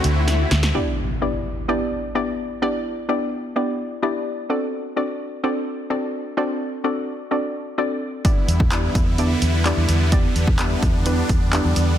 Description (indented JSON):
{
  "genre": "dance-pop",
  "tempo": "128 BPM",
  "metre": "4/4",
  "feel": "straight",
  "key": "E minor",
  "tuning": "A4 = 441 Hz",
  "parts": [
    { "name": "soft round pluck", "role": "accompaniment", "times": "0.0-11.9 s", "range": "A3 to E5", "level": "-23 LUFS", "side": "left 1 dB", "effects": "chorus, sidechain pumping" },
    { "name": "supersaw chords", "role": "sustained chords", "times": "0.0-0.7, 8.2-12.0 s", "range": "D3 to F#4", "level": "-26 LUFS", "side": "right 1 dB", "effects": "sidechain pumping" },
    { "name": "vintage muted fingered electric bass", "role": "bass", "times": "0.0-0.7, 8.5-12.0 s", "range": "D2 to E2", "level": "-20 LUFS", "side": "equal", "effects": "sidechain pumping" },
    { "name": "punchy analog drum machine", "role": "drums", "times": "0.0-0.7, 8.2-11.9 s", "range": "handclaps, hi-hat, kick drum, snare drum", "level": "-20 LUFS", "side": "equal", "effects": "soft clipping on snare" },
    { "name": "swell and impact", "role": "sound effects", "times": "0.0-2.6 s", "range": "none", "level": "-28 LUFS", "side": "left 1 dB", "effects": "none" }
  ],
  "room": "light reverb, digital ambience",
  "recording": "dense, heavily limited modern master",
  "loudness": "-19 LUFS",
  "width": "side -10 dB against mid",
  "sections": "0.7-12.0 A section",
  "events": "swell 0.0-0.7; drum fill 0.3-0.7; impact 0.7-2.6",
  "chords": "0.0 D7; 0.7 Em7; 4.5 D7; 8.2 Em7"
}